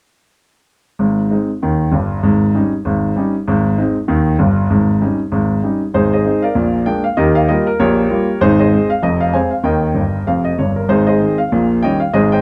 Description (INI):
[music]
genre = jazz, stride piano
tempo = 194 BPM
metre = 4/4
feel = swing 59% on 8ths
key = Ab major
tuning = A4 = 440 Hz
[part]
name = clear grand piano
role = solo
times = 1.0-12.4 s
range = F1 to Ab5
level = -15 LUFS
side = equal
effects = none
[sound]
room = small room reverb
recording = dry, close 1970s-style studio recording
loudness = -15 LUFS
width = mono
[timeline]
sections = 1.0-5.9 A section; 5.9-12.4 B section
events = grand piano fill 10.0-10.9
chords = 1.0 Ab; 2.2 Eb7/Ab; 3.5 Ab; 4.7 Eb7/Ab; 5.9 Ab; 6.6 Bb7; 7.2 Eb9; 8.4 Ab; 9.0 Fm; 9.6 Eb; 10.9 Ab; 11.5 Eb7/Bb